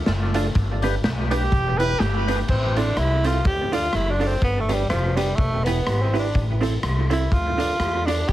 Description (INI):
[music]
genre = ska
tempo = 124 BPM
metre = 4/4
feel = swing 57% on 8ths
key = A minor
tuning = A4 = 440 Hz
[part]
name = percussive tonewheel organ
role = stabs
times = 0.1-2.4 s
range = D4 to B4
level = -32 LUFS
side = left 3 dB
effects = slow rotary speaker, tape echo
[part]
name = upright bass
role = bass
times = 0.1-8.3 s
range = E1 to E2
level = -23 LUFS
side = equal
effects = none
[part]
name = raw garage drum kit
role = drums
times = 0.1-8.3 s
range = crash cymbal, hi-hat, kick drum, rim click, snare drum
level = -26 LUFS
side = equal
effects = none
[part]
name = vintage hollow-body jazz guitar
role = accompaniment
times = 0.3-8.2 s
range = A3 to D5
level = -28 LUFS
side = right 4 dB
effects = tape echo
[part]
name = warm trumpet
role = melody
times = 1.3-2.3 s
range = G4 to B4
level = -27 LUFS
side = right 1 dB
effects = tape echo
[part]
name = breathy tenor saxophone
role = melody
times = 2.5-8.3 s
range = F3 to G4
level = -24 LUFS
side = equal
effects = none
[sound]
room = light reverb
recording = heavily compressed radio sound, multiband compression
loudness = -19 LUFS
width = side -14 dB against mid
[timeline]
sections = 0.0-2.5 A section; 2.5-8.3 A section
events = trumpet solo 0.0-2.5; tenor saxophone solo 2.5-8.3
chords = 0.0 Dm; 0.6 G; 1.5 Em; 2.0 G; 2.5 Am; 3.5 Dm; 4.4 G; 5.4 Em; 6.4 Am; 7.3 Dm